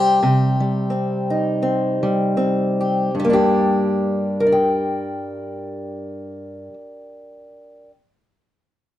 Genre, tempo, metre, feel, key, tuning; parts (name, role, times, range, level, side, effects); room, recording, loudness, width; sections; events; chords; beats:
folk, solo fingerstyle acoustic guitar; 74-90 BPM; 4/4; swing 57% on 8ths; G minor; A4 = 440 Hz
fingerpicked acoustic archtop guitar; solo; 0.0-7.9 s; G2 to G5; -18 LUFS; equal
moderate studio reverb, RT60 0.5 s; dark, warm production; -17 LUFS; side -12 dB against mid
0.0-3.1 A section; 3.1-6.4 B section
slowing down 0.0-3.1
0.0 Cm; 3.1 Gm
| 0.21 0.89 1.60 2.35 | 3.14 3.94 4.75 5.57